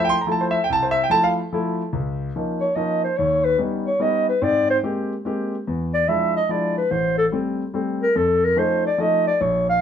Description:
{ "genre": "jazz", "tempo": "144 BPM", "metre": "3/4", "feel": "swing 66% on 8ths", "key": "unclear", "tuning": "A4 = 442 Hz", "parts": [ { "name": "warm grand piano", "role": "accompaniment", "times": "0.0-9.8 s", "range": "A1 to C6", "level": "-22 LUFS", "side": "left 1 dB", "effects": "none" }, { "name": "dark clarinet", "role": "melody", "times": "2.6-9.8 s", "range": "A4 to F5", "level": "-19 LUFS", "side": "equal", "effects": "none" } ], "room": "moderate studio reverb, RT60 0.6 s", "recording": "minimal, uncompressed stereo recording", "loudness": "-19 LUFS", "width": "side -8 dB against mid", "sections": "0.0-1.9 A section; 1.9-9.8 B section", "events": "none", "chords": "0.0 Fmaj7; 1.9 Db69; 3.2 Ebaug7; 4.4 Abmaj9; 5.7 E7b9; 6.9 Am7; 8.2 F7b13" }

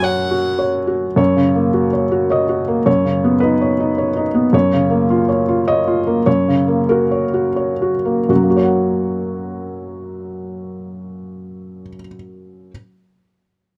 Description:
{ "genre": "neoclassical piano and strings", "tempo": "81-109 BPM", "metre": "3/4", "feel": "rubato", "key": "F# major", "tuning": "A4 = 440 Hz", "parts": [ { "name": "rich violin", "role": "melody", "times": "0.0-0.6 s", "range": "F#5", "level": "-25 LUFS", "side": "equal", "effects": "none" }, { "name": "felt-muted upright piano", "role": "accompaniment", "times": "0.0-12.7 s", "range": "F#2 to F#5", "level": "-17 LUFS", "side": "equal", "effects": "none" } ], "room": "small room ambience", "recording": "dry, close 1970s-style studio recording", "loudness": "-16 LUFS", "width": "mono", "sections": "0.0-1.2 A section; 1.2-8.3 B section; 8.3-12.7 C section", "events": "slowing down 3.7-8.3", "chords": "0.0 F#5; 1.2 F#; 2.9 Badd9/F#; 4.5 A#m/F#; 6.3 F#" }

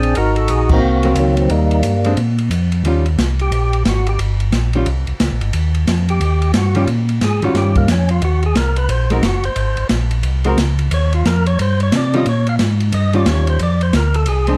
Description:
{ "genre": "soul jazz organ trio", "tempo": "178 BPM", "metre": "4/4", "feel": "swing 63% on 8ths", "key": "Eb mixolydian", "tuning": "A4 = 440 Hz", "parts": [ { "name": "percussive tonewheel organ", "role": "melody", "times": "0.0-14.6 s", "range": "Eb3 to F5", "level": "-22 LUFS", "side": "equal", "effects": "slow rotary speaker, plate reverb" }, { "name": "mellow tonewheel organ", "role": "bass", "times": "0.0-14.6 s", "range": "Gb1 to C3", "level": "-18 LUFS", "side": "equal", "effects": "chorus vibrato, slow rotary speaker" }, { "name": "open jazz drum kit", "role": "drums", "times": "0.0-14.5 s", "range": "crash cymbal, hi-hat, kick drum, ride cymbal, snare drum", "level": "-24 LUFS", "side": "equal", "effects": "none" }, { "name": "archtop guitar, miked and amplified", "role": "accompaniment", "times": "1.0-14.6 s", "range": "Eb3 to Bb4", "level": "-22 LUFS", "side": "equal", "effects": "none" } ], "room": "light reverb", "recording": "dark, warm production", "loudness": "-16 LUFS", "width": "mono", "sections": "0.0-2.8 A section; 2.8-14.6 B section", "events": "band accent 0.7; tonewheel organ solo 2.8-14.6", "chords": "0.2 Ab9; 1.5 Eb; 2.2 Bb5; 2.8 Eb9; 8.2 Ab9; 10.9 Eb9; 13.6 Bb9" }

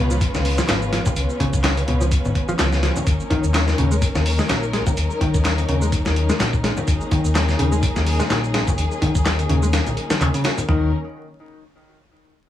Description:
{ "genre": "breakbeat, breaks", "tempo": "126 BPM", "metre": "4/4", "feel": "swing 56% on 16ths", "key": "Eb minor", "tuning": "A4 = 439 Hz", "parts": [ { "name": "warm studio string section", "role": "sustained chords", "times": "0.0-10.9 s", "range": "Gb3 to Cb5", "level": "-26 LUFS", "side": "left 1 dB", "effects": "sidechain pumping" }, { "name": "modern bright picked electric bass", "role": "riff", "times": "0.0-10.9 s", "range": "Cb3 to Ab3", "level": "-25 LUFS", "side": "equal", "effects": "tape echo" }, { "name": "picked electric bass", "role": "bass", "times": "0.0-10.9 s", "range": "Ab1 to Eb2", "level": "-21 LUFS", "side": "left 1 dB", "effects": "none" }, { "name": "electronic shaker and handclaps", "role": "drums", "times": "0.1-10.7 s", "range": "none", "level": "-29 LUFS", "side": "equal", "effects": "none" }, { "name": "dusty soul sampler-style drum kit", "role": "drums", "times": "0.2-10.8 s", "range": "hi-hat, kick drum, snare drum, toms", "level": "-22 LUFS", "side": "equal", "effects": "none" }, { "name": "congas", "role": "percussion", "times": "0.3-10.7 s", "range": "none", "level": "-30 LUFS", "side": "left 3 dB", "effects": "none" } ], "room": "light reverb", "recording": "vinyl crackle", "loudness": "-17 LUFS", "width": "side -12 dB against mid", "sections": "0.0-10.7 A section; 10.7-12.5 B section", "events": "drop 0.0-10.7", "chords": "0.0 Db7; 3.1 Ebm7" }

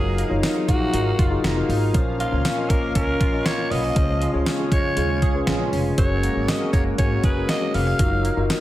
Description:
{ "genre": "1980s-style pop", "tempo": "119 BPM", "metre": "4/4", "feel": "straight", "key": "F# major", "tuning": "A4 = 441 Hz", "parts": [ { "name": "breathy alto saxophone", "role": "melody", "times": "0.0-8.5 s", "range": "E#4 to E#5", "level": "-27 LUFS", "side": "equal", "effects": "none" }, { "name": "mellow tine electric piano", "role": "accompaniment", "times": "0.0-8.6 s", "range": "A#2 to D#5", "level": "-25 LUFS", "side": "left 3 dB", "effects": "none" }, { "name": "warm analog pad", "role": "sustained chords", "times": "0.0-8.6 s", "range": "C#3 to E#5", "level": "-30 LUFS", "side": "equal", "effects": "chorus" }, { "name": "direct-recorded clean electric guitar", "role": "riff", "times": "0.0-8.6 s", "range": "E#3 to G#4", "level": "-32 LUFS", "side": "right 4 dB", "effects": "analog chorus, tape echo" }, { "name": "upright bass", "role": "bass", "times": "0.0-8.5 s", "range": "E#1 to E#2", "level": "-25 LUFS", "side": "equal", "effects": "none" }, { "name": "clean 12-bit digital drum machine", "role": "drums", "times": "0.2-8.6 s", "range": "hi-hat, kick drum, snare drum, tambourine", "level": "-23 LUFS", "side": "equal", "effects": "gated reverb" }, { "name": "mellow synth brass", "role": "stabs", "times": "4.6-5.7 s", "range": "C#4 to G#4", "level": "-32 LUFS", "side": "right 4 dB", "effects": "chorus" } ], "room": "light reverb", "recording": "none", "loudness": "-18 LUFS", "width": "side -14 dB against mid", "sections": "0.0-8.6 A section", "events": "band accent 4.0-6.0", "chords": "0.0 D#madd9/F#; 1.9 A#m; 4.0 C#; 6.0 F#add9; 8.0 D#madd9/F#" }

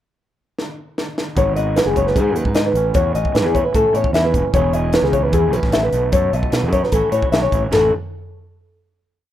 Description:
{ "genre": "math rock and midwest emo", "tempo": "151 BPM", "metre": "4/4", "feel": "straight", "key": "A lydian", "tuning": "A4 = 439 Hz", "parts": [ { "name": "crisp fusion drum kit", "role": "drums", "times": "0.6-7.8 s", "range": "hi-hat, kick drum, ride cymbal, snare drum, toms", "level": "-21 LUFS", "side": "equal", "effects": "none" }, { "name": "twangy electric guitar", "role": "accompaniment", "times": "1.4-7.9 s", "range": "E2 to A4", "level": "-27 LUFS", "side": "right 9 dB", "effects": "phaser" }, { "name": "electric guitar through a small old amp", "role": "arpeggios", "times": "1.4-7.9 s", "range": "G#4 to E5", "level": "-18 LUFS", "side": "left 2 dB", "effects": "none" }, { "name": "fuzz fingered electric bass", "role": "bass", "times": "1.4-7.9 s", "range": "E1 to B2", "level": "-20 LUFS", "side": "right 1 dB", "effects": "overdrive" } ], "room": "studio ambience", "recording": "rough home demo mix", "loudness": "-15 LUFS", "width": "side -12 dB against mid", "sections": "0.0-1.4 pickup bar; 1.4-7.7 A section; 7.7-9.3 final chord", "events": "drum fill 0.6-1.4", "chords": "0.0 N.C.; 1.4 G#m7; 2.8 A69; 4.5 E6; 5.9 B7; 6.9 A69; 7.7 A" }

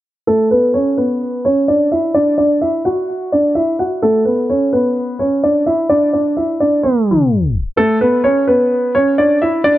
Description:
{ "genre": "hip hop", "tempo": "128 BPM", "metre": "4/4", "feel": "half-time", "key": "F# minor", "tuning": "A4 = 440 Hz", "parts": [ { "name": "dark concert grand piano", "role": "solo", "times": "0.3-9.8 s", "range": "A3 to F#5", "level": "-12 LUFS", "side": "equal", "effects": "low-pass filter, analog delay" } ], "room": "moderate spring reverb, RT60 2.0 s, studio ambience", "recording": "echo-heavy mix, low-pass filter, tape stop", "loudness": "-12 LUFS", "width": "side -14 dB against mid", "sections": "0.3-7.8 A section; 7.8-9.8 B section", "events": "filter sweep 0.3-7.8; tape stop 6.8-7.8", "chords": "0.3 F#5; 4.0 Aadd9 (rootless)" }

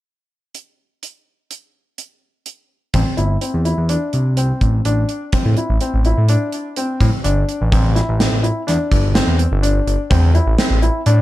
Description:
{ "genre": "progressive instrumental, band music in an uneven meter", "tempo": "126 BPM", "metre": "5/4", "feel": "straight", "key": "A minor", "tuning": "A4 = 438 Hz", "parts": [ { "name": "gated 80s drum kit", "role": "drums", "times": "0.5-11.2 s", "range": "hi-hat, kick drum, snare drum", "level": "-19 LUFS", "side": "equal", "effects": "none" }, { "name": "warm baby grand piano", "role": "arpeggios", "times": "2.9-11.2 s", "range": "C4 to E4", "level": "-21 LUFS", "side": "left 2 dB", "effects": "ping-pong delay" }, { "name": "smooth synth bass", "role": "bass", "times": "2.9-11.2 s", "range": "G1 to A2", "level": "-16 LUFS", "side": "equal", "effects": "none" } ], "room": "light reverb", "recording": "dark, warm production", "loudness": "-14 LUFS", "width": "side -16 dB against mid", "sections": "0.5-2.9 A section; 2.9-7.7 B section; 7.7-11.2 C section", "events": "none", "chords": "0.5 N.C.; 2.9 Am; 7.7 Am7" }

